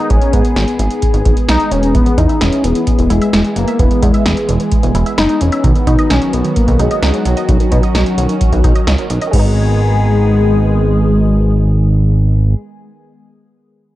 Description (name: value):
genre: synth-pop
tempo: 130 BPM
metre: 4/4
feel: straight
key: G# minor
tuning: A4 = 440 Hz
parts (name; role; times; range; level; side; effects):
- warm velvety synth lead; melody; 0.0-12.5 s; F#3 to D#4; -17 LUFS; left 2 dB; chorus, analog delay
- phased analog pad; sustained chords; 0.0-12.5 s; D#3 to G#4; -20 LUFS; equal; phaser, chorus
- chorused synth bass; bass; 0.1-12.5 s; E1 to B2; -14 LUFS; equal; none
- electro analog drum machine; drums; 0.1-9.4 s; crash cymbal, hi-hat, kick drum, snare drum; -15 LUFS; equal; none
- resonant blip pluck; arpeggios; 1.9-12.6 s; D#3 to E5; -22 LUFS; right 2 dB; phaser, analog delay
room: light reverb, digital ambience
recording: echo-heavy mix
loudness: -10 LUFS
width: side -15 dB against mid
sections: 0.0-9.3 A section; 9.3-13.0 B section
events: none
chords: 0.0 G#m; 1.7 E; 5.6 B; 9.3 G#m